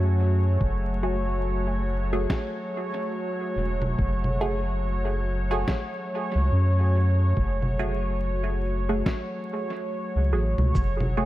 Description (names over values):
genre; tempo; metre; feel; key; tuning
ambient dub; 71 BPM; 4/4; swing 60% on 16ths; F# minor; A4 = 436 Hz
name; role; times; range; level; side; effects
warm analog pad; sustained chords; 0.0-11.3 s; F#3 to C#5; -30 LUFS; equal; wide subtle chorus
filtered dub chord stab; stabs; 0.0-11.3 s; A3 to G#4; -32 LUFS; right 2 dB; phaser, dub echo
round analog bass; bass; 0.0-11.3 s; E1 to F#2; -24 LUFS; equal; none
electronic kick drum; drums; 0.6-11.0 s; none; -26 LUFS; equal; none
electronic snare drum, congas and cabasa; drums; 2.3-11.1 s; none; -32 LUFS; equal; dub echo
room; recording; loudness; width
light reverb, digital ambience; vinyl crackle; -23 LUFS; side -15 dB against mid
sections
0.0-10.8 A section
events
none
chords
0.0 F#madd9